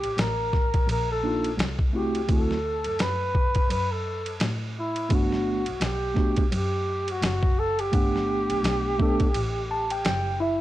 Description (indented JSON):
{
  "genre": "hip hop, jazz-hop",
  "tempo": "85 BPM",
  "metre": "4/4",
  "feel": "swing 59% on 16ths",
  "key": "G major",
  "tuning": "A4 = 441 Hz",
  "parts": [
    { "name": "mellow flugelhorn", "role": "melody", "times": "0.0-10.4 s", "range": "E4 to B4", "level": "-28 LUFS", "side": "equal", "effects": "none" },
    { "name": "dark double bass", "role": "bass", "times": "0.0-10.6 s", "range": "F#1 to A2", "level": "-31 LUFS", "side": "equal", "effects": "none" },
    { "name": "boom bap sampler-style drum kit", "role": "drums", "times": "0.0-10.2 s", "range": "hi-hat, kick drum, ride cymbal, snare drum", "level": "-27 LUFS", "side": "equal", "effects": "vintage 12-bit sampler grit" },
    { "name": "mellow tine electric piano", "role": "accompaniment", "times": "1.2-10.6 s", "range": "A3 to A5", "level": "-27 LUFS", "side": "right 1 dB", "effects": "medium stereo tremolo" }
  ],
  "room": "little or no reverb",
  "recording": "dry, gritty hardware recording",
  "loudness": "-23 LUFS",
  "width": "side -14 dB against mid",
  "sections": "0.0-10.6 A section",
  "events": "tine electric piano fill 9.3-10.6",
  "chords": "0.0 C7(no3); 2.3 D; 5.1 Gmaj7"
}